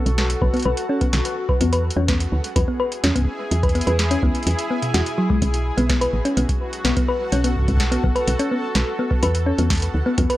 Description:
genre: IDM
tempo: 126 BPM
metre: 4/4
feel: straight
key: unclear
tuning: A4 = 441 Hz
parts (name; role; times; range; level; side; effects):
- granular cloud pad; sustained chords; 0.0-10.4 s; B3 to A4; -28 LUFS; equal; built-in reverb
- woody FM bass; bass; 0.1-10.3 s; A1 to E2; -21 LUFS; equal; tube saturation
- electro analog drum machine; drums; 0.1-10.4 s; hi-hat, snare drum; -27 LUFS; equal; none
- thumb-piano-like synth pluck; arpeggios; 0.4-10.4 s; B2 to B4; -23 LUFS; left 1 dB; chorus, tape echo
- electronic kick drum; drums; 0.4-10.3 s; none; -22 LUFS; equal; none
room: light reverb, digital ambience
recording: dry, gritty hardware recording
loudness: -18 LUFS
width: side -15 dB against mid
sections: 0.0-10.4 A section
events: none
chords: 0.0 B5; 1.6 E; 5.4 B5; 9.2 E

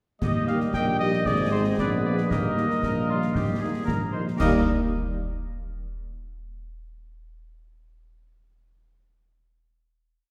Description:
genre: military-style march for wind band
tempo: 115 BPM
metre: 2/4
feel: straight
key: Eb major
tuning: A4 = 439 Hz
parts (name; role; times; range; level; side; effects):
- warm cornet; melody; 0.2-4.6 s; C5 to G5; -33 LUFS; equal; none
- clear woodwind section; second line; 0.2-4.6 s; F4 to Eb5; -34 LUFS; equal; none
- dark trombone section; sustained chords; 0.2-4.6 s; G3 to C4; -35 LUFS; equal; none
- warm tuba; bass; 0.2-4.6 s; Ab1 to Eb2; -29 LUFS; equal; none
- concert snare drum, clash cymbals and concert bass drum; drums; 0.2-4.7 s; none; -32 LUFS; equal; none
- mellow French horn section; accompaniment; 0.5-4.6 s; G3 to Ab4; -34 LUFS; equal; none
room: wet concert hall reverb, RT60 2.1 s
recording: heard from further back in the room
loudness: -25 LUFS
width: mono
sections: 0.2-4.4 A section; 4.4-5.5 final chord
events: none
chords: 0.2 Eb; 1.3 Ab; 1.8 Bb7b9; 2.3 Eb

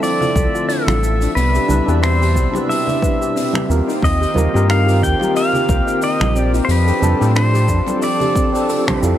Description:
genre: sunset chillout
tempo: 90 BPM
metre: 4/4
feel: swing 56% on 16ths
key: unclear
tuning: A4 = 439 Hz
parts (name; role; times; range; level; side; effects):
- pedal steel guitar; melody; 0.0-9.0 s; A4 to G5; -20 LUFS; left 1 dB; analog delay
- overdriven tine electric piano; accompaniment; 0.0-9.2 s; C4 to C5; -22 LUFS; moving between left 3 dB and right 3 dB; fast tremolo, auto-pan, analog delay
- lush unison pad; sustained chords; 0.0-9.2 s; B2 to E5; -23 LUFS; equal; chorus
- soft round pluck; arpeggios; 0.0-9.2 s; B3 to E5; -25 LUFS; left 3 dB; chorus, analog delay
- vintage brush drum kit; drums; 0.0-9.2 s; cabasa, finger snaps, hi-hat; -28 LUFS; left 1 dB; analog delay
- congas; percussion; 0.2-9.0 s; none; -28 LUFS; right 2 dB; analog delay
- round analog bass; bass; 0.4-9.1 s; A1 to A2; -16 LUFS; equal; none
- electronic kick drum; drums; 0.4-9.0 s; none; -20 LUFS; equal; overdrive
room: light reverb, studio ambience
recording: echo-heavy mix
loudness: -14 LUFS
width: side -11 dB against mid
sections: 0.0-9.2 A section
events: band accent 8.9-9.2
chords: 0.0 Dm9; 1.4 Cmaj7; 3.7 Eb69; 6.7 F69

